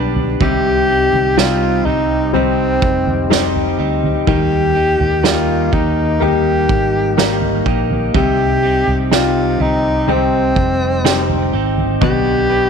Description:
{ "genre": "pop ballad", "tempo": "62 BPM", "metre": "4/4", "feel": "straight", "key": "C minor", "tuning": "A4 = 439 Hz", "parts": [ { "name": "clear upright piano", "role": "accompaniment", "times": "0.0-12.7 s", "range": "B2 to G4", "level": "-19 LUFS", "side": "left 13 dB", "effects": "none" }, { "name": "direct-recorded clean electric guitar", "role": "arpeggios", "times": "0.0-12.7 s", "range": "C3 to B4", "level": "-21 LUFS", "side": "right 12 dB", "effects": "tape echo" }, { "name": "fingered electric bass", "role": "bass", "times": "0.0-12.7 s", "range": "F1 to Eb2", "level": "-20 LUFS", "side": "equal", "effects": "none" }, { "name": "soft-mallet drum kit", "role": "drums", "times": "0.2-12.2 s", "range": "kick drum, snare drum, toms", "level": "-20 LUFS", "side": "right 4 dB", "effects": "none" }, { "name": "warm alto saxophone", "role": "melody", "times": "0.4-12.7 s", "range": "C4 to G4", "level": "-17 LUFS", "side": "left 1 dB", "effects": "none" } ], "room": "light reverb, studio ambience", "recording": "1960s-style stereo with parts hard left and right", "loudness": "-13 LUFS", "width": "side -6 dB against mid", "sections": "0.0-12.7 A section", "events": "none", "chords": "0.4 Cm; 4.3 Eb; 8.1 Cm; 12.0 G/B", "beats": "| 0.40 1.37 2.34 3.31 | 4.27 5.24 6.21 7.18 | 8.14 9.11 10.08 11.05 | 12.02" }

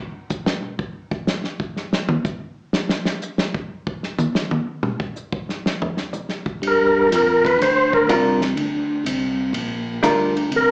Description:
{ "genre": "soul jazz organ trio", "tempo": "123 BPM", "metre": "4/4", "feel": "swing 68% on 8ths", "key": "unclear", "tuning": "A4 = 440 Hz", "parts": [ { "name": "warm soul drum kit", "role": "drums", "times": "0.3-10.7 s", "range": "hi-hat, kick drum, ride cymbal, snare drum, toms", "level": "-26 LUFS", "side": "equal", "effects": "slapback echo" }, { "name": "tonewheel organ", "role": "bass", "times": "6.6-10.7 s", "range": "Bb1 to G2", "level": "-24 LUFS", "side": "equal", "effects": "overdrive, chorus vibrato, slow rotary speaker" }, { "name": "percussive tonewheel organ", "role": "melody", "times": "6.7-10.7 s", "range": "Bb4 to C5", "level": "-18 LUFS", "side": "equal", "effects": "slow rotary speaker, chorus vibrato" }, { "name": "vintage hollow-body jazz guitar", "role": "accompaniment", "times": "8.1-10.3 s", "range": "G3 to Bb4", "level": "-20 LUFS", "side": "equal", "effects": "slapback echo" } ], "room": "moderate club reverb, RT60 0.6 s", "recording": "live gig heard through the venue's PA, club reverb, small speaker sound", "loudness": "-21 LUFS", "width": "mono", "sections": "0.0-10.7 A section", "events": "tonewheel organ solo 0.0-10.7; drum solo 0.0-6.6", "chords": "0.0 N.C.; 6.6 Gm7", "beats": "0.31 | 0.80 1.28 1.77 2.25 | 2.74 3.23 3.71 4.20 | 4.68 5.17 5.66 6.14 | 6.63 7.12 7.61 8.09 | 8.58 9.07 9.55 10.04 | 10.53" }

